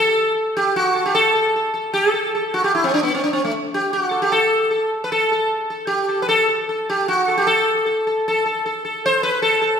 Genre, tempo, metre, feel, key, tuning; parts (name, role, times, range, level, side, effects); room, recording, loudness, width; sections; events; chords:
indian classical; 152 BPM; 4/4; straight; A raga bhimpalasi; A4 = 440 Hz
sitar; solo; 0.0-9.8 s; A3 to C5; -16 LUFS; equal
wet recital hall reverb, RT60 1.6 s; recorded in a church or concert hall; -16 LUFS; side -7 dB against mid
0.0-9.8 A section